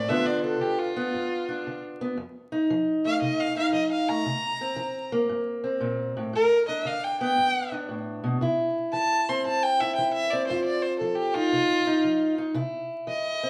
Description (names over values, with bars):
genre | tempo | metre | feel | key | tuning
acoustic country blues, solo or duo | 116 BPM | 4/4 | swing 66% on 8ths | unclear | A4 = 444 Hz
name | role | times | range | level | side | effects
dark fiddle | melody | 0.0-13.5 s | F4 to C6 | -28 LUFS | equal | none
fingerpicked steel-string acoustic guitar | accompaniment | 0.0-13.5 s | F2 to F4 | -29 LUFS | equal | none
room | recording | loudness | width
wet large studio reverb, RT60 1.1 s | band playing live in one room, vinyl crackle | -26 LUFS | mono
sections
0.0-8.4 A section; 8.4-13.5 A section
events
fiddle solo 0.0-13.5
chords
0.1 G7; 2.2 F7; 4.3 C7; 6.3 G; 8.4 C; 10.5 F5; 12.6 C